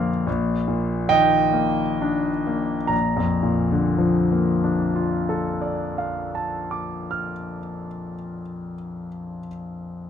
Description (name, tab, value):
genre	classical, impressionist solo piano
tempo	31-38 BPM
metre	3/4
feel	rubato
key	Bb major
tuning	A4 = 438 Hz
part	warm concert grand piano	solo	0.0-10.1 s	Bb1 to F6	-21 LUFS	equal	none
room	moderate studio reverb, RT60 0.8 s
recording	dark, warm production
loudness	-20 LUFS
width	side -8 dB against mid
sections	0.0-2.9 A section; 2.9-8.0 B section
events	slowing down 0.0-2.9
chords	0.3 Ebmaj7/Bb; 2.9 Bbmaj7